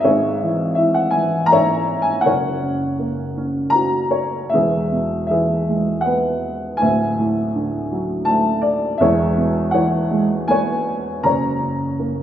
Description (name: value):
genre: classical, lyrical solo piano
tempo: 81 BPM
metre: 3/4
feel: rubato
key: E lydian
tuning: A4 = 440 Hz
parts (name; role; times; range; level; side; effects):
- dark upright piano; solo; 0.0-12.2 s; D1 to A#5; -16 LUFS; equal; none
room: wet recital hall reverb, RT60 1.7 s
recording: recorded in a church or concert hall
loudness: -16 LUFS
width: side -10 dB against mid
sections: 0.0-12.2 A section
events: none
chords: 0.1 C#m/G#; 2.3 F#; 4.5 E; 6.8 Dadd9; 9.0 E6; 11.3 F#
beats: | 0.06 0.80 1.53 | 2.26 3.00 3.76 | 4.54 5.32 6.07 | 6.82 7.56 8.30 | 9.03 9.76 10.51 | 11.26 12.02